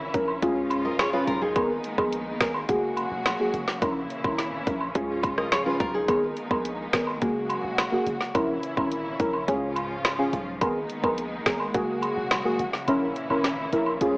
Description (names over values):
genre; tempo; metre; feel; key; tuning
dancehall; 106 BPM; 4/4; straight; unclear; A4 = 440 Hz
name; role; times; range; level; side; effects
dark symphonic string section; sustained chords; 0.0-14.2 s; G#2 to F#4; -32 LUFS; equal; sidechain pumping
hard-hitting 808-style bass; bass; 0.0-14.2 s; E1 to C#2; -37 LUFS; equal; none
deep mellow chord stab; accompaniment; 0.1-14.2 s; A#3 to A#4; -26 LUFS; equal; chorus, phaser
island pop drum kit; drums; 0.1-14.1 s; hi-hat, kick drum, rim click, snare drum; -28 LUFS; equal; none
cabasa and woodblock; percussion; 0.1-14.0 s; none; -32 LUFS; right 1 dB; none
nylon-string guitar; arpeggios; 0.8-1.7, 5.4-6.2 s; D#4 to D#5; -29 LUFS; equal; digital delay
room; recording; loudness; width
moderate lush hall reverb, RT60 2.1 s; worn, warbling old tape, cassette tape, warbly pitch drift, small speaker sound; -23 LUFS; side -25 dB against mid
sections
0.0-14.2 A section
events
kick muted 12.9-14.2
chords
0.4 C#; 1.6 G#madd9; 2.7 F#add9; 3.8 A#dim; 5.0 C#; 6.1 G#madd9; 7.2 F#add9; 8.3 A#dim; 9.5 C#; 10.6 G#madd9; 11.7 F#add9; 12.9 A#dim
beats
0.42 0.99 | 1.56 2.12 2.69 3.25 | 3.82 4.39 4.95 5.52 | 6.08 6.65 7.22 7.78 | 8.35 8.91 9.48 10.05 | 10.61 11.18 11.74 12.31 | 12.88 13.44 14.01